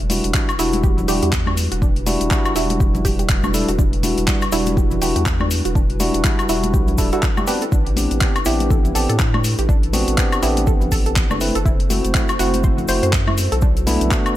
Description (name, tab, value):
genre	deep house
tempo	122 BPM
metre	4/4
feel	swing 58% on 16ths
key	E minor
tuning	A4 = 440 Hz
part	dark analog pad	sustained chords	0.0-14.4 s	G3 to C5	-28 LUFS	left 1 dB	chorus, sidechain pumping
part	round analog bass	bass	0.0-14.1 s	D1 to A2	-22 LUFS	equal	sidechain pumping
part	deep house drum kit	drums	0.0-14.3 s	handclaps, hi-hat, woodblock	-24 LUFS	left 2 dB	overdrive
part	tine electric piano	stabs	0.1-14.3 s	G3 to B4	-22 LUFS	equal	sidechain pumping, low-pass filter, ping-pong delay
part	cabasa	percussion	0.1-14.3 s	none	-32 LUFS	left 6 dB	none
part	congas	percussion	0.1-14.1 s	none	-29 LUFS	left 3 dB	none
part	electronic kick drum	drums	0.3-14.2 s	none	-19 LUFS	equal	overdrive
part	analog pluck	arpeggios	0.6-13.7 s	D4 to C5	-27 LUFS	right 4 dB	chorus, phaser, sidechain pumping, dub echo
room	little or no reverb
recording	none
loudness	-15 LUFS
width	side -14 dB against mid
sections	0.0-14.4 A section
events	none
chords	0.0 Em9; 7.5 Am11; 11.4 F#m7b5; 13.6 Bm7